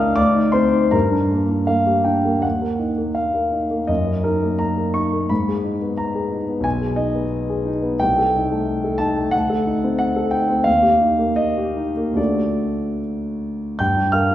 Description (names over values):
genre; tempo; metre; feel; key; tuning
classical, romantic character piece for solo piano; 72-92 BPM; 2/4; rubato; Eb minor; A4 = 438 Hz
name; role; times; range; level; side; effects
warm concert grand piano; solo; 0.0-14.3 s; Cb2 to G6; -17 LUFS; equal; none
room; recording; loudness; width
wet scoring stage reverb, RT60 1.8 s; heard from further back in the room; -17 LUFS; side -12 dB against mid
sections
0.0-2.4 A section; 2.4-13.8 B section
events
none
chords
0.2 Cmadd9/D; 0.9 Gm; 2.4 Ebm; 3.9 Ebm/Gb; 5.3 Abm; 6.6 Abm/Cb; 8.0 Am7b5/C; 9.3 D7b9; 10.7 Eb; 12.2 D; 13.8 Gm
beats
0.16 | 0.93 1.69 | 2.44 3.17 | 3.89 4.60 | 5.30 5.98 | 6.65 7.32 | 8.00 8.67 | 9.33 9.99 | 10.66 11.38 | 12.18 13.01 | 13.79